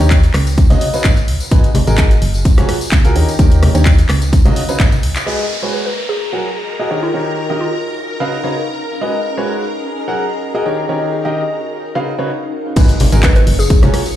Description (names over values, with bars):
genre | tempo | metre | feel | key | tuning
piano house | 128 BPM | 4/4 | swing 53% on 16ths | G# dorian | A4 = 440 Hz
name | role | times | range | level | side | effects
clear upright piano | riff | 0.0-14.0 s | C#3 to F#5 | -20 LUFS | equal | sidechain pumping, low-pass filter, dub echo
solid FM bass | bass | 0.0-5.1, 12.8-13.9 s | F#1 to D#2 | -14 LUFS | equal | sidechain pumping
house drum kit | drums | 0.0-5.2, 12.8-14.0 s | crash cymbal, handclaps, hi-hat, rim click | -22 LUFS | equal | small room ambience
tambourine and congas | percussion | 0.0-5.2, 12.8-14.1 s | none | -22 LUFS | left 2 dB | none
electronic kick drum | drums | 0.1-4.9, 12.8-13.8 s | none | -11 LUFS | equal | small room ambience
string machine, violins | sustained chords | 5.3-14.2 s | A#4 to C#6 | -26 LUFS | equal | ensemble chorus, sidechain pumping
downlifter and impact | sound effects | 5.3-9.0, 12.8-14.2 s | none | -22 LUFS | equal | none
granular cloud pad | texture | 6.0-14.2 s | C#4 to D#5 | -24 LUFS | left 1 dB | built-in reverb, sidechain pumping
hollow square pluck | melody | 5.7-7.9, 13.2-13.8 s | E#4 to B4 | -24 LUFS | left 1 dB | chorus, dub echo
room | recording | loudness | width
light reverb | played on a big sound system in a bare room, large studio reverb | -12 LUFS | side -12 dB against mid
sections
0.0-5.3 A section; 5.3-12.8 B section; 12.8-14.2 C section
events
drum fill 4.8-5.3; band accent 5.1; drop 12.8-14.2; impact 12.8-14.2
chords
0.3 C#9sus4; 1.5 G#m7; 2.5 F#maj9; 3.2 D#7; 4.1 C#9sus4; 5.3 G#m7; 6.2 F#add9; 6.9 D#7; 7.8 C#9sus4; 9.0 G#m7; 10.0 F#add9; 10.7 D#7; 11.6 C#9sus4; 12.8 G#m7